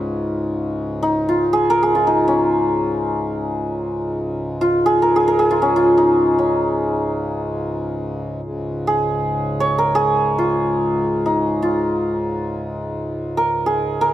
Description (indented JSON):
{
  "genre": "indian classical, Hindustani",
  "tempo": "free time",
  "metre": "none",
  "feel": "none",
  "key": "Db raga bhupali",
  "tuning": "A4 = 445 Hz",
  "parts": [
    { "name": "santur", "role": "melody", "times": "0.0-14.1 s", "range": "Db4 to Db5", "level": "-17 LUFS", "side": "equal", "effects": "none" },
    { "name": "pedal harmonium", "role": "drone", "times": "0.0-14.1 s", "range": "Db2 to Ab2", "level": "-26 LUFS", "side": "equal", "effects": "none" }
  ],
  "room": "light reverb",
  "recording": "close, detailed microphones",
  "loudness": "-17 LUFS",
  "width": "side -13 dB against mid",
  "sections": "0.0-8.4 A section; 8.4-14.1 A section",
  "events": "none",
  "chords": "none"
}